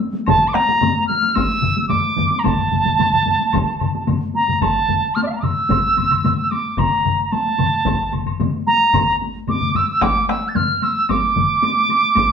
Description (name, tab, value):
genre	japanese traditional, taiko drum ensemble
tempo	111 BPM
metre	4/4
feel	straight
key	A miyako bushi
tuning	A4 = 440 Hz
part	taiko ensemble	percussion	0.0-12.3 s	none	-24 LUFS	left 1 dB	none
part	mellow piccolo	melody	0.3-12.3 s	D5 to A6	-17 LUFS	right 2 dB	none
part	solo taiko drums	percussion	0.3-11.5 s	none	-26 LUFS	left 6 dB	none
part	taiko ensemble	percussion	0.3-11.5 s	none	-24 LUFS	equal	none
part	taiko ensemble	percussion	0.3-12.3 s	none	-26 LUFS	left 1 dB	none
part	woodblock	percussion	0.3-12.3 s	none	-31 LUFS	left 4 dB	none
room	wet studio reverb, RT60 0.8 s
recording	band playing live in one room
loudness	-15 LUFS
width	side -7 dB against mid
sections	0.0-4.6 A section; 4.6-12.3 B section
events	none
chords	none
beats	| 0.27 0.82 1.36 1.91 | 2.45 2.99 3.54 4.08 | 4.62 5.16 5.70 6.24 | 6.78 7.32 7.86 8.40 | 8.94 9.48 10.02 10.55 | 11.09 11.63 12.16